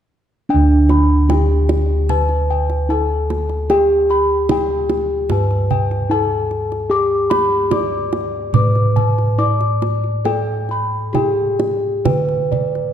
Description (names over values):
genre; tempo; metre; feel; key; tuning
Javanese gamelan; 74 BPM; 4/4; uneven beats; D pelog barang; A4 = 440 Hz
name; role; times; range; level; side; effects
gamelan-type bronze metallophone; melody; 0.5-12.9 s; D4 to D5; -20 LUFS; right 1 dB; none
gamelan-type bossed gongs; arpeggios; 0.5-12.9 s; D5 to D6; -23 LUFS; left 4 dB; none
gamelan-type bossed gongs; bass; 0.5-12.9 s; D2 to A4-40c; -18 LUFS; equal; none
kendang; percussion; 0.9-12.9 s; none; -23 LUFS; right 4 dB; none
room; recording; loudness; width
moderate concert hall reverb, RT60 1.9 s; dark, warm production; -14 LUFS; side -9 dB against mid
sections
0.5-12.9 A section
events
none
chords
none